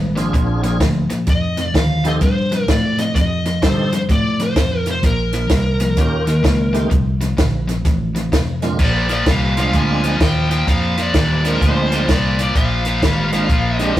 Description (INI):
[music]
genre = electric blues shuffle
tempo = 128 BPM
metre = 4/4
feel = swing 64% on 8ths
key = Bb mixolydian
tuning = A4 = 440 Hz
[part]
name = cranked stack guitar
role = riff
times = 0.0-14.0 s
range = F2 to Bb3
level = -22 LUFS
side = left 1 dB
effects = overdrive
[part]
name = vintage muted fingered electric bass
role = bass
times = 0.0-14.0 s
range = F1 to A2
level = -20 LUFS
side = equal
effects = none
[part]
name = tonewheel organ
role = accompaniment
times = 0.2-14.0 s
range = Bb2 to A4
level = -24 LUFS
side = right 2 dB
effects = slow rotary speaker, overdrive, chorus vibrato
[part]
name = compact cocktail drum kit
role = drums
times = 0.2-14.0 s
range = crash cymbal, hi-hat, kick drum, snare drum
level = -19 LUFS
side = equal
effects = none
[part]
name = smooth overdriven lead guitar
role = melody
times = 1.3-14.0 s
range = Bb4 to Ab5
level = -22 LUFS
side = left 1 dB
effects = none
[sound]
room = moderate stone room reverb, RT60 0.9 s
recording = rough rehearsal-room recording, warm saturation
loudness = -14 LUFS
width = side -13 dB against mid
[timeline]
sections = 0.0-8.8 A section; 8.8-14.0 A section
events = none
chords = 0.0 Bb9; 1.3 F9; 5.0 Bbsus2; 6.0 Eb9; 6.9 F; 8.8 Bb9